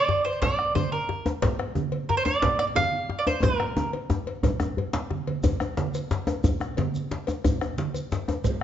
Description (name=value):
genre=west african traditional, West African drum ensemble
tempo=120 BPM (dotted quarters)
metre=12/8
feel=straight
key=Bb major pentatonic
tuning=A4 = 440 Hz
part: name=mandolin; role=melody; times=0.0-3.9 s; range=Bb4 to F5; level=-24 LUFS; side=right 3 dB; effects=slapback echo
part: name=djembe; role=percussion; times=0.1-8.6 s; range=none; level=-32 LUFS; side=left 5 dB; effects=none
part: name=bombo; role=percussion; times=0.3-8.6 s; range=none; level=-31 LUFS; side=right 1 dB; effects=none
part: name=cowbell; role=percussion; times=0.3-8.6 s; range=none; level=-34 LUFS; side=left 6 dB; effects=none
part: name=congas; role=percussion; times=0.4-8.6 s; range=none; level=-32 LUFS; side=right 6 dB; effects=none
part: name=djembe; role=percussion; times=0.4-8.4 s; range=none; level=-28 LUFS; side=left 2 dB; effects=none
part: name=shekere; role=percussion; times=5.4-8.6 s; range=none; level=-38 LUFS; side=right 2 dB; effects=none
room=moderate recital hall reverb, RT60 1.3 s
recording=nothing above 7.7 kHz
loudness=-24 LUFS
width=side -10 dB against mid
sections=0.0-5.4 A section; 5.4-8.6 B section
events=drum fill 3.4-5.4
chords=none